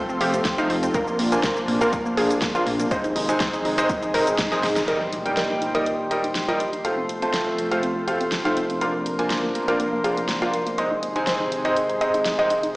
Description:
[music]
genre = progressive house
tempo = 122 BPM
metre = 4/4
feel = straight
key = Eb major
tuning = A4 = 440 Hz
[part]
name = warm analog pad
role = sustained chords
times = 0.0-12.8 s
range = Bb2 to Bb4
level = -28 LUFS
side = equal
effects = chorus, sidechain pumping
[part]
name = wide unison pluck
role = arpeggios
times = 0.0-12.7 s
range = Bb3 to Eb5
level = -26 LUFS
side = equal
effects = sidechain pumping, dub echo
[part]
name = drifting glass-harmonics texture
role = texture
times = 0.0-12.8 s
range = C5 to C6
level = -34 LUFS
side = equal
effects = chorus, built-in reverb, sidechain pumping
[part]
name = deep house drum kit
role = drums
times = 0.1-12.7 s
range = hi-hat, shaker, snare drum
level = -29 LUFS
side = equal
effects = overdrive, sidechain pumping on hats, sidechain pumping on perc
[part]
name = bright concert grand piano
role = stabs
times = 0.2-12.5 s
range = G3 to A5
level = -24 LUFS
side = equal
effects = sidechain pumping, dub echo
[part]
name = fat analog bass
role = bass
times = 0.2-4.8 s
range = F1 to Ab2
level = -27 LUFS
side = equal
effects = tube saturation, sidechain pumping
[part]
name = electronic kick drum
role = drums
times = 0.5-4.5 s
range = none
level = -31 LUFS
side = equal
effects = overdrive
[part]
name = impact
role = sound effects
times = 4.9-6.8 s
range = none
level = -42 LUFS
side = equal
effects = none
[sound]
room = wet recital hall reverb, RT60 1.6 s, digital ambience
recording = played on a big sound system in a bare room, stone room reverb, small speaker sound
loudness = -20 LUFS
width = side -22 dB against mid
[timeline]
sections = 0.0-4.9 A section; 4.9-12.8 B section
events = drum fill 4.5-4.9; band accent 4.8; impact 4.9-6.8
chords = 0.0 F; 0.9 Bbadd9; 2.9 Ab; 4.9 Eb; 6.8 F; 8.8 Bbadd9; 10.8 Ab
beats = 0.45 | 0.94 1.44 1.93 2.42 | 2.91 3.40 3.90 4.39 | 4.88 5.37 5.86 6.36 | 6.85 7.34 7.83 8.32 | 8.81 9.31 9.80 10.29 | 10.78 11.27 11.77 12.26 | 12.75

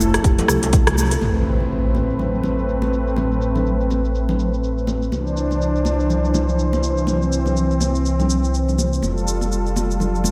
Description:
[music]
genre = afro house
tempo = 123 BPM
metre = 4/4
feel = swing 59% on 16ths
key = A minor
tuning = A4 = 444 Hz
[part]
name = warm analog pad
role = sustained chords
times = 0.0-10.3 s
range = E3 to C5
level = -24 LUFS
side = equal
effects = chorus, vintage 12-bit sampler grit, sidechain pumping
[part]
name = kalimba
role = arpeggios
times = 0.0-1.2 s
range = E4 to A4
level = -28 LUFS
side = equal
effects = sidechain pumping, dub echo
[part]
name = dark detuned saw bass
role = bass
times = 0.0-10.3 s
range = F1 to C2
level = -24 LUFS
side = equal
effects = sidechain pumping
[part]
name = afro-pop drum kit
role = drums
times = 0.0-10.3 s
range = hi-hat, rim click, shaker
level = -28 LUFS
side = equal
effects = low-pass filter on hats, low-pass filter on perc, low-pass filter on snare
[part]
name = congas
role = percussion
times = 0.0-10.3 s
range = none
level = -28 LUFS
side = equal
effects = none
[part]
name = djembe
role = percussion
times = 0.1-1.2 s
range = none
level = -32 LUFS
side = equal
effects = none
[part]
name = electronic kick drum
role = drums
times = 0.2-0.8 s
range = none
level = -17 LUFS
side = equal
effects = none
[part]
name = impact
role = sound effects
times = 1.2-3.2 s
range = none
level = -29 LUFS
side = equal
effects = none
[sound]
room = light reverb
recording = none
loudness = -20 LUFS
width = mono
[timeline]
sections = 0.0-1.2 A section; 1.2-10.3 B section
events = band accent 0.9; impact 1.2-3.2; filter sweep on drum 1.2-10.3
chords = 0.0 Fadd9; 1.2 Amadd9; 5.1 Cadd9; 9.0 Fadd9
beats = 0.24 0.73 | 1.22 1.71 2.19 2.68 | 3.17 3.66 4.14 4.63 | 5.12 5.61 6.10 6.58 | 7.07 7.56 8.05 8.54 | 9.02 9.51 10.00

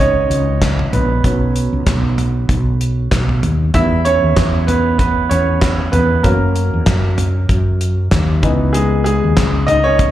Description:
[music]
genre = piano-driven pop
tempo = 96 BPM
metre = 4/4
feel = swing 56% on 16ths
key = B major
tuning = A4 = 439 Hz
[part]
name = clear baby grand piano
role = accompaniment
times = 0.0-10.1 s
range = E3 to E5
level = -17 LUFS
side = right 1 dB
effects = slapback echo
[part]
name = woody fretless electric bass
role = bass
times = 0.0-10.1 s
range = A#1 to F#2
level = -16 LUFS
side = equal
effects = none
[part]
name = damped 70s drum kit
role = drums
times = 0.3-10.1 s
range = handclaps, hi-hat, kick drum, snare drum, toms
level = -17 LUFS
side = equal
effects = none
[sound]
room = small room ambience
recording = live gig heard through the venue's PA, club reverb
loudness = -13 LUFS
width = side -13 dB against mid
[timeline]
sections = 0.0-10.1 A section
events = grand piano solo 0.0-10.1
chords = 0.0 C#m7; 1.2 Bsus2; 3.7 Em; 6.2 F#; 8.4 C#m7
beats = 0.62 | 1.24 1.87 2.49 3.12 | 3.75 4.37 5.00 5.62 | 6.25 6.87 7.50 8.12 | 8.75 9.37 10.00

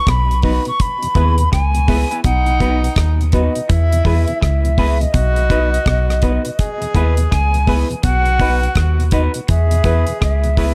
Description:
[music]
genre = roots reggae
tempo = 83 BPM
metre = 4/4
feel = swing 62% on 16ths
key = B major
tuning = A4 = 441 Hz
[part]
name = hollow concert flute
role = melody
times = 0.0-10.7 s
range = D#5 to C#6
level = -24 LUFS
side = equal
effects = tape echo
[part]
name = semi-hollow electric guitar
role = riff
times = 0.1-10.4 s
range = B2 to E3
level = -27 LUFS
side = equal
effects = subtle chorus
[part]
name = soft dub sub bass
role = bass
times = 0.1-10.7 s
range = B1 to E2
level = -18 LUFS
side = equal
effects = none
[part]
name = deep reggae drum kit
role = drums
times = 0.1-10.7 s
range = hi-hat, kick drum, rim click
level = -21 LUFS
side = equal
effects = none
[part]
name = mellow tonewheel organ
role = accompaniment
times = 0.3-10.7 s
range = E2 to E4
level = -31 LUFS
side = equal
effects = none
[part]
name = clean electric guitar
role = accompaniment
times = 0.4-10.7 s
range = B3 to B4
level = -29 LUFS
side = equal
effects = tape echo
[part]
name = barky reed electric piano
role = stabs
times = 0.4-10.7 s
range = B3 to B4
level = -29 LUFS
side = equal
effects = overdrive, fast tremolo
[part]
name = breathy tenor saxophone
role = second line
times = 2.2-10.6 s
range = D#4 to G#4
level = -28 LUFS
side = equal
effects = tape echo
[sound]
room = light reverb, small room ambience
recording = none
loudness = -16 LUFS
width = mono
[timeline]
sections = 0.0-2.2 A section; 2.2-10.7 B section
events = none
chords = 0.0 B; 0.8 E; 2.2 B; 3.7 E; 5.1 B; 6.6 E; 8.0 B; 9.5 E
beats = 0.07 0.80 1.52 | 2.24 2.97 3.69 4.42 | 5.14 5.87 6.59 7.31 | 8.04 8.76 9.49 10.21

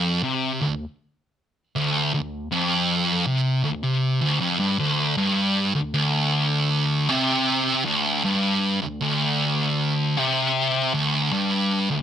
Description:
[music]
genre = metal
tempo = 78 BPM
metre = 4/4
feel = straight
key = D minor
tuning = A4 = 439 Hz
[part]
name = thick fuzz guitar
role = solo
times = 0.0-12.0 s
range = D2 to C3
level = -20 LUFS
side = equal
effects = distortion
[sound]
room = light reverb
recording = none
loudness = -20 LUFS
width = side -9 dB against mid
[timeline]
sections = 0.0-4.8 A section; 4.8-12.0 B section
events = none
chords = none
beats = 0.23 0.99 | 1.75 2.51 3.27 4.03 | 4.79 5.56 6.33 7.09 | 7.86 8.63 9.40 10.17 | 10.95 11.72

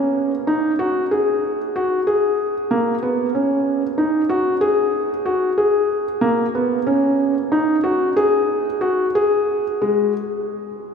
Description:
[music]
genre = contemporary instrumental, contemporary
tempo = 187 BPM (eighths)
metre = 11/8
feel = straight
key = G# minor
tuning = A4 = 440 Hz
[part]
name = felt-muted upright piano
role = arpeggios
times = 0.0-10.1 s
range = G#3 to G#4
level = -17 LUFS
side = equal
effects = none
[sound]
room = wet cathedral reverb, RT60 5.4 s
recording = recorded in a church or concert hall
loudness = -17 LUFS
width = side -6 dB against mid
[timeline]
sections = 0.0-9.8 A section; 9.8-10.9 B section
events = none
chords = none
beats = 0.16 0.48 0.80 1.11 1.43 1.75 2.07 2.38 | 2.70 3.02 3.34 3.65 3.97 4.29 4.61 4.93 5.25 5.57 5.89 | 6.22 6.54 6.86 7.18 7.51 7.83 8.16 8.48 8.81 9.14 9.48 | 9.81

